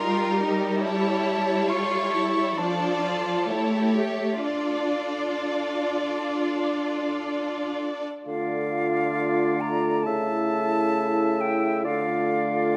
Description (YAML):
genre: classical, slow romantic movement for symphony orchestra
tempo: 62-71 BPM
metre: 4/4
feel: rubato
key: D minor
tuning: A4 = 440 Hz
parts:
  - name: rich studio violin section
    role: melody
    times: 0.0-8.0 s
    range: Bb4 to D5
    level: -34 LUFS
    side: equal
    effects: none
  - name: rich symphonic violin section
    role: second line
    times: 0.0-8.0 s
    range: Eb4 to A4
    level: -36 LUFS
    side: equal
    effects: none
  - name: silver concert flute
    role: second line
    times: 0.0-12.8 s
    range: D5 to C#6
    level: -32 LUFS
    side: equal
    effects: none
  - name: warm symphonic viola section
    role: accompaniment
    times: 0.0-8.0 s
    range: F3 to D4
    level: -29 LUFS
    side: equal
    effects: none
  - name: rich symphonic cello section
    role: bass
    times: 0.0-7.8 s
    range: D4 to G4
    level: -33 LUFS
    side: equal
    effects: none
  - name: bright clarinet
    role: second line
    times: 8.3-12.8 s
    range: E4 to F4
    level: -33 LUFS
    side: equal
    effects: none
  - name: warm oboe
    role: second line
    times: 8.3-12.8 s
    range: D5 to E5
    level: -34 LUFS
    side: equal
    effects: none
  - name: mellow bassoon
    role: accompaniment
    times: 8.3-12.8 s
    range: C#3 to D3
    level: -30 LUFS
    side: equal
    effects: none
  - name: mellow French horn section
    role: sustained chords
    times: 8.3-12.8 s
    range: A3 to F4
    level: -30 LUFS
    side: equal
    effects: none
room: moderate scoring stage reverb, RT60 1.9 s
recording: none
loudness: -25 LUFS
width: mono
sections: 0.0-8.3 A section; 8.3-12.8 B section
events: none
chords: 0.0 Eb/G; 0.8 A7/G; 2.6 Dm/F; 3.5 A7; 4.4 Dm; 10.1 A/C#; 11.9 Dm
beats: | 0.85 1.70 2.57 3.49 | 4.43 5.40 6.36 7.31 | 8.27 9.17 10.06 10.96 | 11.85 12.75